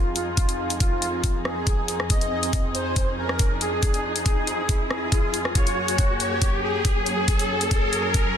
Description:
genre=heavy wobble dubstep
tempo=139 BPM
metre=4/4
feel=swing 53% on 16ths, half-time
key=F phrygian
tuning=A4 = 442 Hz
part: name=soft supersaw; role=melody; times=0.0-8.3 s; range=F4 to Eb5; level=-27 LUFS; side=equal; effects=ping-pong delay
part: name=dark studio string section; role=sustained chords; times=0.0-8.4 s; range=F2 to Ab4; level=-30 LUFS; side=equal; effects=sidechain pumping
part: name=riser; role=sound effects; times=0.9-8.4 s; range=none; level=-30 LUFS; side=left 1 dB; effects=none
part: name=big-room dance drum kit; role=drums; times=0.2-8.2 s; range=hi-hat, rim click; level=-28 LUFS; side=left 2 dB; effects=soft clipping on snare
part: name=electronic kick drum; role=drums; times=0.4-8.2 s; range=none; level=-22 LUFS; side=equal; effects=none
room=light reverb, digital ambience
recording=dense, heavily limited modern master, lossy compression artefacts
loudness=-21 LUFS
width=side -8 dB against mid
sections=0.0-8.4 A section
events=build-up 0.0-8.4; riser 0.9-8.4; drum fill 5.6-8.4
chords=0.0 Fm7; 5.6 Gbadd9

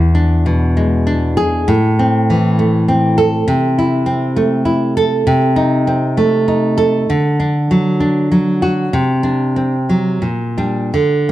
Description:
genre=romantic piece for solo classical guitar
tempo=82-102 BPM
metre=3/4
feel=rubato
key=A minor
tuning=A4 = 440 Hz
part: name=nylon-string guitar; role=solo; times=0.0-11.3 s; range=E2 to A4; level=-12 LUFS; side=equal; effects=none
room=moderate recital hall reverb, RT60 1.5 s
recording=dark, warm production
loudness=-12 LUFS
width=side -14 dB against mid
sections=0.0-11.3 A section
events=none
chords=0.0 E7; 1.7 Am; 3.5 Am/C; 5.3 Adim/C; 7.1 D; 8.9 D7/C; 10.2 Gm/Bb

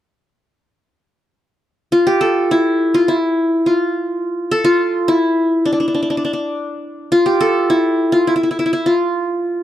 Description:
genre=turkish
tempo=208 BPM (eighths)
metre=9/8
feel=straight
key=A makam ussak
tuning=A4 = 440 Hz
part: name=qanun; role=melody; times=1.9-9.6 s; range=D4 to A4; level=-14 LUFS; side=equal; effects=none
room=studio ambience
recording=dry, close 1970s-style studio recording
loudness=-14 LUFS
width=side -12 dB against mid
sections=1.3-9.6 A section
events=none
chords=none

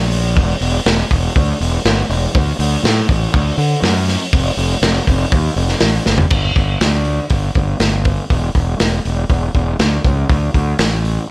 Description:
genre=psychedelic rock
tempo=121 BPM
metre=4/4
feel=straight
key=unclear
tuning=A4 = 440 Hz
part: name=fuzz fingered electric bass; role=bass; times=0.0-11.2 s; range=E1 to D3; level=-16 LUFS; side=equal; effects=overdrive
part: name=crunchy breakbeat drum kit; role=drums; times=0.1-11.2 s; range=crash cymbal, hi-hat, kick drum, snare drum, toms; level=-16 LUFS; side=equal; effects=none
room=little or no reverb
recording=none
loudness=-13 LUFS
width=side -28 dB against mid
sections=0.0-6.3 A section; 6.3-11.3 B section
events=drum fill 6.1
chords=none

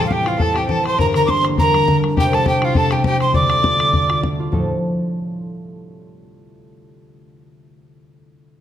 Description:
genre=celtic folk, Celtic reel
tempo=203 BPM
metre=4/4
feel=straight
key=D minor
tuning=A4 = 440 Hz
part: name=mellow hollow tin whistle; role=melody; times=0.0-4.2 s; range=F5 to D6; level=-19 LUFS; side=right 3 dB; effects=none
part: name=rich fiddle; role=second line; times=0.0-4.2 s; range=F4 to D5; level=-22 LUFS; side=left 5 dB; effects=none
part: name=concert harp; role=accompaniment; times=0.0-6.2 s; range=G1 to D5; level=-20 LUFS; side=equal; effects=none
part: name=bodhran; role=percussion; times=0.0-4.7 s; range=none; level=-22 LUFS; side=left 2 dB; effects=none
room=moderate recital hall reverb, RT60 1.4 s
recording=none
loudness=-15 LUFS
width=side -10 dB against mid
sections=0.0-4.5 A section; 4.5-5.7 B section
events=none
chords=0.0 Am; 1.0 Gm; 2.2 C; 3.4 Dm; 4.5 D5

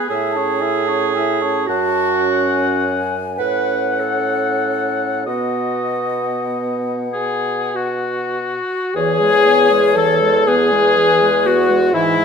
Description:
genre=classical, slow romantic movement for wind quintet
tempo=30-42 BPM (dotted quarters)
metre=6/8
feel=rubato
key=E major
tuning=A4 = 440 Hz
part: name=hollow wooden flute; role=melody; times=0.0-12.2 s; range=B4 to A5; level=-23 LUFS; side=left 10 dB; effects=none
part: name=warm oboe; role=second line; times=0.0-12.2 s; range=E4 to F#5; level=-21 LUFS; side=left 5 dB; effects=none
part: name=warm French horn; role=accompaniment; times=0.0-12.2 s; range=B3 to A4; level=-20 LUFS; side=left 1 dB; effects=none
part: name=warm clarinet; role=accompaniment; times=0.0-12.2 s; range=E3 to B4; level=-22 LUFS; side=right 10 dB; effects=none
part: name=dark bassoon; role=bass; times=0.1-12.2 s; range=E2 to B2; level=-22 LUFS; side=right 3 dB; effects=none
room=moderate stone room reverb, RT60 1.3 s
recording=none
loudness=-15 LUFS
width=side -6 dB against mid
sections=0.0-8.9 A section; 8.9-12.2 B section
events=none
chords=0.1 Amaj7; 1.7 F#m; 3.4 F#m/A; 5.3 B; 8.9 E

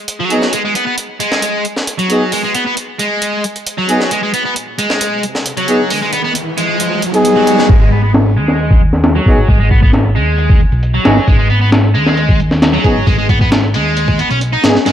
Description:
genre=breakbeat, breaks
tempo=134 BPM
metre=4/4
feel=straight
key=G# minor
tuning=A4 = 440 Hz
part: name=breakbeat sampler-style drum kit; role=drums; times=0.1-14.9 s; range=hi-hat, kick drum, snare drum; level=-13 LUFS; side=equal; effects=high-pass filter on hats, low-pass filter on hats, small room ambience, high-pass filter on snare, low-pass filter on snare, high-pass filter on kick, low-pass filter on kick
part: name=distorted electric guitar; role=riff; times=0.2-14.9 s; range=F#3 to D#4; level=-16 LUFS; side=equal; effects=overdrive, low-pass filter, tape echo
part: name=mellow brass ensemble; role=stabs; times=0.3-14.8 s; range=B3 to G#4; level=-17 LUFS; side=equal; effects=low-pass filter, tape echo
part: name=riser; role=sound effects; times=5.3-7.7 s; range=none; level=-20 LUFS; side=equal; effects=none
part: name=fat analog bass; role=bass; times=7.7-14.9 s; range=G#1 to D#2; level=-14 LUFS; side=equal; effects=none
room=light reverb, digital ambience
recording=dark, warm production, high-pass filter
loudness=-10 LUFS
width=side -10 dB against mid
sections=0.0-7.7 A section; 7.7-14.9 B section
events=filter sweep on brass ensemble 0.0-7.7, 7.7-14.9; riser 5.3-7.7; build-up 7.7-14.9; filter sweep on drum 7.7-14.9; filter sweep on distorted electric guitar 7.7-14.9; filter sweep 7.7-14.9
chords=0.0 G#m

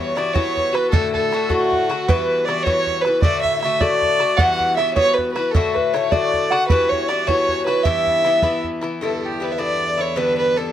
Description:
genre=celtic folk, Celtic jig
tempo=104 BPM (dotted quarters)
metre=6/8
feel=straight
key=E dorian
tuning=A4 = 440 Hz
part: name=dark fiddle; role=melody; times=0.0-10.7 s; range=F#4 to F#5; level=-20 LUFS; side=right 2 dB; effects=none
part: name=reedy baroque flute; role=second line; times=0.0-10.7 s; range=F#4 to F#5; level=-24 LUFS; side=left 5 dB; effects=none
part: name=Irish bouzouki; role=accompaniment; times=0.0-10.7 s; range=G2 to F#4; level=-23 LUFS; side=left 4 dB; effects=none
part: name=bodhran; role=percussion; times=0.2-8.9 s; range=none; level=-21 LUFS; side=right 1 dB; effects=none
part: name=open-back banjo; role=second line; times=4.4-8.6 s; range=A4 to F#5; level=-28 LUFS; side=right 6 dB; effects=none
part: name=pedal harmonium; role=drone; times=9.0-10.7 s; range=E2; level=-31 LUFS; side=left 1 dB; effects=none
room=light reverb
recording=close, detailed microphones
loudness=-16 LUFS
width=side -10 dB against mid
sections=0.0-9.0 A section; 9.0-10.7 B section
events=none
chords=0.0 Emadd9; 0.9 D; 2.1 Emadd9; 3.2 D; 4.4 Emadd9; 5.5 D; 6.7 Emadd9; 7.8 Em; 9.0 Em7

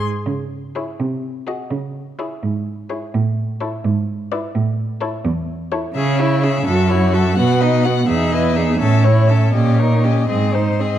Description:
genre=quick classical-period movement for string quartet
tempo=84 BPM (dotted quarters)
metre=6/8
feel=rubato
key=C# minor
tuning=A4 = 440 Hz
part: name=rich violin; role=melody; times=0.0-11.0 s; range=B#4 to F#5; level=-25 LUFS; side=left 10 dB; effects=none
part: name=clear viola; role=accompaniment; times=0.0-11.0 s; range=B3 to F#4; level=-24 LUFS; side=equal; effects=none
part: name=clear cello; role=bass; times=0.0-11.0 s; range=E2 to C#3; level=-17 LUFS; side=right 2 dB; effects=none
part: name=rich violin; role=second line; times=0.8-11.0 s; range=E4 to C#5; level=-25 LUFS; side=left 4 dB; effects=none
room=moderate recital hall reverb, RT60 1.7 s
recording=dark, warm production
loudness=-16 LUFS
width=side -11 dB against mid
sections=0.3-11.0 A section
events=none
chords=0.3 C#m; 1.0 G#7/B#; 1.7 C#m; 3.1 A; 3.8 E7/G#; 4.5 A; 6.0 C#m; 6.7 F#m7; 7.4 B; 8.1 Emaj7; 8.8 A; 9.5 D#7/A#; 10.3 G#

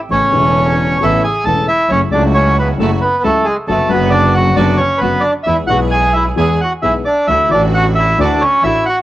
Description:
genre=tango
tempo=133 BPM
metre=4/4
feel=rubato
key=A major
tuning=A4 = 439 Hz
part: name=bandoneon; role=melody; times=0.1-9.0 s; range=G#3 to A5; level=-13 LUFS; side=right 1 dB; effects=cassette tape
part: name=dark upright piano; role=accompaniment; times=0.1-8.8 s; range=E1 to G#4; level=-19 LUFS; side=left 6 dB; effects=cassette tape
part: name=bright studio string section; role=stabs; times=0.1-8.8 s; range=A3 to A4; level=-25 LUFS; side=right 7 dB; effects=cassette tape
part: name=clear double bass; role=bass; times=0.1-8.8 s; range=E1 to E2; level=-17 LUFS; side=right 2 dB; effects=none
room=light reverb, small room ambience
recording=home recording on cassette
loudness=-11 LUFS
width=side -15 dB against mid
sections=0.1-9.0 A section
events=none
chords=0.1 Aadd9; 1.9 F#m7; 3.7 Bm/F#; 5.5 E; 7.3 Dadd9

